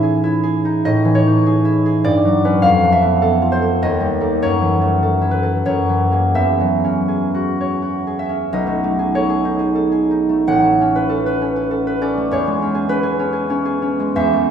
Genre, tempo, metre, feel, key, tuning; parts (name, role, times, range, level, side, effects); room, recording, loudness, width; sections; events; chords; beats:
classical, solo harp piece; 80-103 BPM; 3/4; rubato; E major; A4 = 445 Hz
concert harp; solo; 0.0-14.5 s; A1 to G#5; -14 LUFS; equal
wet scoring stage reverb, RT60 1.6 s; heard from further back in the room; -14 LUFS; side -8 dB against mid
0.0-8.5 A section; 8.5-14.5 B section
0.0 Amaj7#11; 2.0 Gmaj7#11; 2.6 Fmaj7#11; 3.8 D#; 4.4 F#m7; 5.7 F#9; 6.4 E69; 8.5 B13; 10.5 A69; 12.3 E6
0.23 | 0.84 1.43 2.02 | 2.61 3.20 3.80 | 4.40 5.02 5.67 | 6.36 7.09 7.81 | 8.50 9.13 9.77 | 10.47 11.10 11.70 | 12.32 12.91 13.50 | 14.16